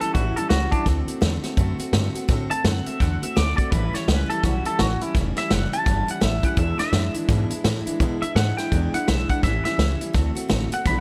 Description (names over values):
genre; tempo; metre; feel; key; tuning
rockabilly; 168 BPM; 4/4; swing 61% on 8ths; A mixolydian; A4 = 442 Hz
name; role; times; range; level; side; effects
twangy electric guitar; melody; 0.0-11.0 s; D4 to B5; -29 LUFS; equal; lush chorus, tape echo
picked steel-string acoustic guitar; accompaniment; 0.0-11.0 s; E2 to F#4; -30 LUFS; equal; none
upright bass; bass; 0.0-11.0 s; E1 to B2; -27 LUFS; equal; none
vintage drum kit; drums; 0.0-11.0 s; hi-hat, kick drum, snare drum; -26 LUFS; equal; none
room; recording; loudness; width
light reverb; none; -22 LUFS; mono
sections
0.0-11.0 A section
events
none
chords
0.0 A7; 0.9 D7; 3.7 A7; 6.6 E7; 9.4 A7; 10.1 D7